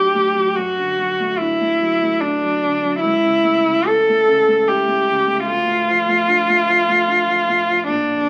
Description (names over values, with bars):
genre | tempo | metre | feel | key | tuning
classical, romantic duo for cello and grand piano | 74 BPM | 3/4 | rubato | D minor from 3.0 s | A4 = 440 Hz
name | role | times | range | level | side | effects
warm cello | melody | 0.0-8.3 s | D4 to A4 | -17 LUFS | equal | none
dark concert grand piano | accompaniment | 0.0-8.3 s | Bb1 to E4 | -28 LUFS | equal | none
room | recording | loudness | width
moderate large studio reverb, RT60 1.1 s | very old 78 rpm record, vinyl crackle | -17 LUFS | mono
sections
0.0-8.3 A section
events
none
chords
0.0 D; 0.6 D/F#; 3.0 A/C#; 5.5 Dm